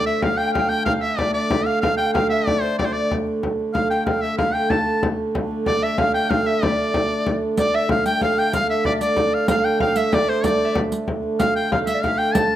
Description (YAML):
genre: medieval dance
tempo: 125 BPM (dotted quarters)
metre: 6/8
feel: straight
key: D minor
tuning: A4 = 440 Hz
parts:
  - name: edgy shawm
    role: melody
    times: 0.0-12.6 s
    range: C5 to A5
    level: -23 LUFS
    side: equal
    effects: plate reverb
  - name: Celtic harp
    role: second line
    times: 0.0-12.6 s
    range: C5 to A5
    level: -28 LUFS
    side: right 3 dB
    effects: plate reverb
  - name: dark hurdy-gurdy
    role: drone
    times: 0.0-12.6 s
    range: D3 to A3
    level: -23 LUFS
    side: right 2 dB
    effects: stereo widening, plate reverb
  - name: mellow hollow tenor recorder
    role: second line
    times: 0.1-12.6 s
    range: C5 to A5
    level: -27 LUFS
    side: left 4 dB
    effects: plate reverb
  - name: frame drum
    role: percussion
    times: 0.2-12.5 s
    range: none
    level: -24 LUFS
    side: left 2 dB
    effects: none
  - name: riq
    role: percussion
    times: 7.6-12.5 s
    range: none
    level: -27 LUFS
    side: right 4 dB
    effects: none
room: wet studio reverb, RT60 0.6 s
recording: rough home demo mix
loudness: -18 LUFS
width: side -12 dB against mid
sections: 0.0-7.6 A section; 7.6-12.6 A section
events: none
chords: none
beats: 0.39 | 0.87 1.35 | 1.83 2.31 | 2.79 3.27 | 3.75 4.23 | 4.71 5.19 | 5.67 6.14 | 6.62 7.10 | 7.58 8.06 | 8.53 9.01 | 9.49 9.96 | 10.44 10.92 | 11.39 11.87 | 12.35